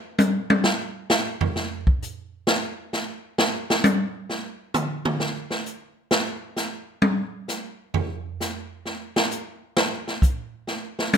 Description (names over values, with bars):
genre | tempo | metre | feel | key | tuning
jazz | 132 BPM | 4/4 | swing 68% on 8ths | none | none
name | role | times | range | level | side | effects
swinging big-band drum kit | drums | 0.2-11.2 s | hi-hat, kick drum, snare drum, toms | -22 LUFS | equal | none
room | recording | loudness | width
moderate large studio reverb, RT60 0.9 s | minimal, uncompressed stereo recording | -23 LUFS | side -7 dB against mid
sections
0.0-11.2 A section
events
drum solo 0.0-11.2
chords
none